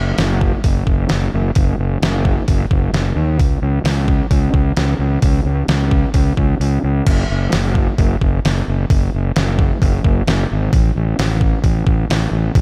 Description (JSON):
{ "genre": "rock, shoegaze and dream pop", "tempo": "131 BPM", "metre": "4/4", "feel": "straight", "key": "unclear", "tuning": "A4 = 440 Hz", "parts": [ { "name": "fuzz fingered electric bass", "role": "bass", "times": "0.0-12.6 s", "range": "F#1 to D#2", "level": "-19 LUFS", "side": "equal", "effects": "overdrive" }, { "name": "detuned 8-bit digital drum machine", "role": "drums", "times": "0.2-12.6 s", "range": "crash cymbal, hi-hat, kick drum, snare drum", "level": "-19 LUFS", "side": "equal", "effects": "none" } ], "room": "light reverb", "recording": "none", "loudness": "-16 LUFS", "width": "mono", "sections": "0.0-12.6 A section", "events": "kick and snare drop out 6.6-7.1", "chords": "none" }